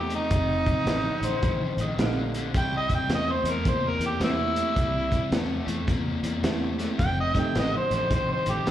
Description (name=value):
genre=electric blues shuffle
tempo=108 BPM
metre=4/4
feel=swing 64% on 8ths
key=C mixolydian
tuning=A4 = 440 Hz
part: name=overdriven harmonica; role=melody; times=0.0-8.7 s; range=C4 to G5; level=-27 LUFS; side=right 1 dB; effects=slapback echo
part: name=raw garage guitar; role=riff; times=0.0-8.7 s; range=F2 to Bb3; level=-31 LUFS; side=left 4 dB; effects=overdrive, slapback echo
part: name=fingered electric bass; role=bass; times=0.0-8.7 s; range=F1 to E2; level=-31 LUFS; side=equal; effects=none
part: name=crunchy breakbeat drum kit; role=drums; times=0.1-8.7 s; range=hi-hat, kick drum, snare drum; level=-28 LUFS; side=equal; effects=none
part: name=electric guitar through a small old amp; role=second line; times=1.2-2.4 s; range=C5 to F5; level=-33 LUFS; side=left 3 dB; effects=slapback echo
part: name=dark upright piano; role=accompaniment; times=2.0-8.1 s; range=G3 to E4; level=-33 LUFS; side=right 5 dB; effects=slapback echo
room=light reverb, small room ambience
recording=live gig heard through the venue's PA, club reverb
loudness=-23 LUFS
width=side -11 dB against mid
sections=0.0-8.7 A section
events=none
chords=0.3 F9; 2.5 C9; 7.0 F9